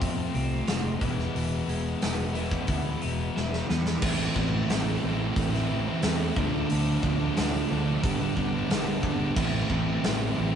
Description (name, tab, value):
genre	quiet-loud alternative rock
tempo	90 BPM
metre	4/4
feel	straight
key	A minor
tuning	A4 = 440 Hz
part	twelve-string electric guitar	arpeggios	0.0-4.0 s	E2 to F4	-36 LUFS	right 2 dB	phaser
part	thick fuzz guitar	riff	0.0-10.6 s	G2 to F4	-31 LUFS	left 4 dB	distortion
part	overdriven fingered electric bass	bass	0.0-10.6 s	E1 to F2	-31 LUFS	equal	none
part	huge arena drum kit	drums	0.0-10.2 s	crash cymbal, hi-hat, kick drum, snare drum	-30 LUFS	equal	none
part	thick fuzz guitar	riff	4.0-10.6 s	G2 to E4	-29 LUFS	right 6 dB	distortion
room	light reverb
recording	rough rehearsal-room recording, nothing above 10.7 kHz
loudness	-24 LUFS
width	side -8 dB against mid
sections	0.0-4.0 A section; 4.0-10.6 B section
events	drum fill 3.4-4.0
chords	0.0 F; 1.0 E; 4.0 Am; 6.4 Dm; 8.0 G; 9.4 Am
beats	0.02 0.68 | 1.35 2.02 2.69 3.35 | 4.02 4.69 5.36 6.02 | 6.69 7.36 8.03 8.70 | 9.37 10.03